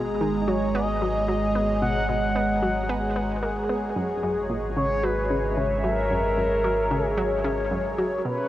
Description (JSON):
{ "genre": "ambient, sequencer-driven space music", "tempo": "112 BPM", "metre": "4/4", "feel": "straight", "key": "unclear", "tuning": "A4 = 440 Hz", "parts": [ { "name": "phased analog pad", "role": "sustained chords", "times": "0.0-8.5 s", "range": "B2 to A#5", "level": "-26 LUFS", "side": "equal", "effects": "phaser, chorus" }, { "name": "analog pluck", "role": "riff", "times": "0.0-8.4 s", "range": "F#2 to B3", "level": "-29 LUFS", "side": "equal", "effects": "chorus, tape echo" }, { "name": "warm sub bass", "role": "bass", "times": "0.0-8.5 s", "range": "G#1", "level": "-31 LUFS", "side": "equal", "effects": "tube saturation" }, { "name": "expressive synth lead", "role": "melody", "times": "0.4-8.5 s", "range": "A#4 to F#5", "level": "-27 LUFS", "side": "equal", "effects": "chorus, tape echo" }, { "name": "bubbling stepped-filter texture", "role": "texture", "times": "8.2-8.5 s", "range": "C#4 to C#5", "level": "-35 LUFS", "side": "left 2 dB", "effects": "chorus, built-in reverb" } ], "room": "wet huge ambient reverb, RT60 6.9 s", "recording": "worn, warbling old tape, cassette tape, warbly pitch drift", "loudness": "-22 LUFS", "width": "side -14 dB against mid", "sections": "0.0-8.2 A section", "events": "none", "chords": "0.0 G#m7; 4.0 F#7/G#", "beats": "0.21 0.75 1.28 | 1.82 2.35 2.89 3.43 | 3.96 4.50 5.03 5.57 | 6.11 6.64 7.18 7.71 | 8.25" }